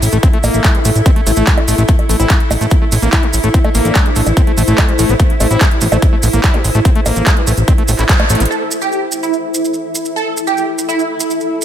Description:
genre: psychedelic trance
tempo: 145 BPM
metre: 4/4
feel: straight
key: A minor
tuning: A4 = 438 Hz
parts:
  - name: swarming drone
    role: sustained chords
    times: 0.0-11.6 s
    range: E4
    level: -21 LUFS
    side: equal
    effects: built-in reverb, sidechain pumping
  - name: fat analog bass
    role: bass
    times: 0.0-8.5 s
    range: A1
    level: -14 LUFS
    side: equal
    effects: none
  - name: big-room dance drum kit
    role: drums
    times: 0.0-8.5 s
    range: bongos, handclaps, hi-hat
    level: -19 LUFS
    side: right 2 dB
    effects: studio ambience
  - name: maracas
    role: percussion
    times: 0.0-11.6 s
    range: none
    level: -23 LUFS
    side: right 4 dB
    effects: none
  - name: granular cloud pad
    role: texture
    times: 0.0-11.6 s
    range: E4 to E5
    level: -23 LUFS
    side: left 2 dB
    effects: built-in reverb, sidechain pumping
  - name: overdriven acid bass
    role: riff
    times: 0.1-8.4 s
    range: G3 to E4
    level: -20 LUFS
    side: moving between left 5 dB and right 3 dB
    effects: auto-pan, sidechain pumping, ping-pong delay
  - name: electronic kick drum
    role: drums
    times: 0.2-8.2 s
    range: none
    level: -12 LUFS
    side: equal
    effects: studio ambience
  - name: formant-sweep wobble bass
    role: second line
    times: 0.7-7.5 s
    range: E3 to D4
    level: -30 LUFS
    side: left 3 dB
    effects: none
  - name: supersaw stab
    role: melody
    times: 8.5-11.6 s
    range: E4 to A4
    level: -18 LUFS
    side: right 4 dB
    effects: phaser, sidechain pumping, tape echo
room: light reverb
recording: none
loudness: -10 LUFS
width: side -10 dB against mid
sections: 0.0-8.5 A section; 8.5-11.6 B section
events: band accent 8.1; drum fill 8.3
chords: 0.0 A5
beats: | 0.23 0.64 1.06 1.47 | 1.89 2.30 2.71 3.13 | 3.54 3.96 4.37 4.78 | 5.20 5.61 6.02 6.44 | 6.85 7.26 7.68 8.09 | 8.51 8.92 9.33 9.75 | 10.16 10.57 10.99 11.40

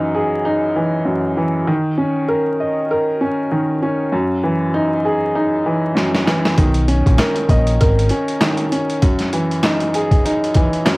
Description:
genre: hip hop, boom-bap hip-hop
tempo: 98 BPM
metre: 4/4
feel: swing 58% on 16ths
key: unclear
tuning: A4 = 440 Hz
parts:
  - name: warm upright piano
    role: accompaniment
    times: 0.0-11.0 s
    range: F#2 to D#5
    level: -16 LUFS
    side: equal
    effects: cassette tape, high-pass filter, low-pass filter
  - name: boom bap sampler-style drum kit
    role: drums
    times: 6.0-11.0 s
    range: hi-hat, kick drum, snare drum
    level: -17 LUFS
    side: equal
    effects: cassette tape
  - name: deep dub fingered electric bass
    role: bass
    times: 6.6-8.1 s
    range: G#1 to B1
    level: -16 LUFS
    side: equal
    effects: none
room: light reverb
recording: home recording on cassette, vinyl crackle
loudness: -15 LUFS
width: side -24 dB against mid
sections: 0.0-11.0 A section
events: drum fill 6.0-6.6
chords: 0.0 F#sus2; 1.7 A#madd11/D#; 4.1 F#sus2; 6.6 Bmaj9; 9.0 F#sus2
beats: 0.46 1.07 | 1.68 2.29 2.90 3.52 | 4.13 4.74 5.35 5.96 | 6.58 7.19 7.80 8.41 | 9.03 9.64 10.25 10.86

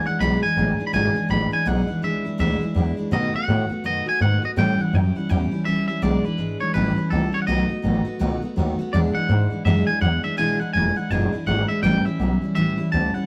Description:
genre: rockabilly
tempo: 165 BPM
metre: 4/4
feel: swing 61% on 8ths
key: E mixolydian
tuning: A4 = 438 Hz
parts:
  - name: twangy electric guitar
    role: melody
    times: 0.0-13.3 s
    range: A4 to B5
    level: -28 LUFS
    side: equal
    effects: none
  - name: picked steel-string acoustic guitar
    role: accompaniment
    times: 0.0-13.3 s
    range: E2 to F#4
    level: -26 LUFS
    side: equal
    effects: none
  - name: upright bass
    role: bass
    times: 0.0-13.2 s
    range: E1 to B2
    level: -25 LUFS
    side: equal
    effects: none
room: moderate stone room reverb, RT60 0.9 s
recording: rough rehearsal-room recording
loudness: -22 LUFS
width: mono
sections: 0.0-8.9 A section; 8.9-13.3 A section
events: none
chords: 0.0 E7; 3.1 B7; 4.6 A7; 6.0 E7; 6.7 A7; 7.5 B7; 8.9 E7; 11.8 A7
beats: | 0.20 0.56 0.93 1.29 | 1.66 2.02 2.38 2.75 | 3.11 3.48 3.84 4.20 | 4.57 4.93 5.29 5.66 | 6.02 6.38 6.75 7.11 | 7.47 7.83 8.20 8.56 | 8.93 9.29 9.65 10.02 | 10.38 10.74 11.11 11.47 | 11.84 12.20 12.56 12.93

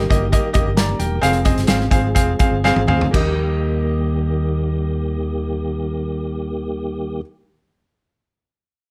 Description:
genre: uptempo 1960s-style soul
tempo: 118-138 BPM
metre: 4/4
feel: straight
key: Eb major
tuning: A4 = 440 Hz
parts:
  - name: bright baby grand piano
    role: accompaniment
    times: 0.0-7.2 s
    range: Bb3 to Bb5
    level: -23 LUFS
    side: equal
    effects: none
  - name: mellow tonewheel organ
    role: sustained chords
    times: 0.0-7.2 s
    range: Eb3 to Ab4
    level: -28 LUFS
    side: equal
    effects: fast rotary speaker, chorus vibrato
  - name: fingered electric bass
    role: bass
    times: 0.0-7.2 s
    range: Fb1 to Eb2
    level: -24 LUFS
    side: equal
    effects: tube saturation
  - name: natural country drum kit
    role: drums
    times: 0.0-3.3 s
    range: crash cymbal, hi-hat, kick drum, snare drum, toms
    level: -21 LUFS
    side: equal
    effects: none
  - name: congas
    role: percussion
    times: 0.1-3.4 s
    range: none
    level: -35 LUFS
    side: equal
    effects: none
room: light reverb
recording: none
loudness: -19 LUFS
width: mono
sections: 0.0-3.1 A section; 3.1-7.2 B section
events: slowing down 0.0-3.1; drum fill 2.6-3.1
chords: 0.0 Eb; 1.2 Fm; 3.1 Eb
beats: 0.33 0.77 | 1.22 1.68 2.15 2.63 | 3.14 3.65 4.16 4.67 | 5.17 5.68 6.20 6.71

